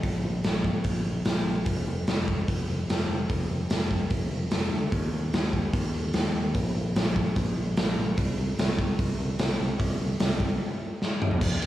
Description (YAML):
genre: hard rock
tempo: 148 BPM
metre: 4/4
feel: straight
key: unclear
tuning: A4 = 440 Hz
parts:
  - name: fingered electric bass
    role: bass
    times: 0.0-11.7 s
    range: F1 to Eb2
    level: -29 LUFS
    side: equal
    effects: none
  - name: raw garage drum kit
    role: drums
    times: 0.0-11.7 s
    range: crash cymbal, hi-hat, kick drum, ride cymbal, snare drum, toms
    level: -26 LUFS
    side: equal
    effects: none
room: moderate lush hall reverb, RT60 1.6 s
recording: studio reverb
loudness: -25 LUFS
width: side -14 dB against mid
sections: 0.0-11.4 A section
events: drum fill 11.0-11.4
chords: none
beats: | 0.03 0.44 0.85 1.26 | 1.66 2.07 2.48 2.89 | 3.29 3.70 4.11 4.52 | 4.92 5.33 5.74 6.15 | 6.55 6.96 7.37 7.77 | 8.18 8.58 8.99 9.39 | 9.80 10.20 10.61 11.01 | 11.41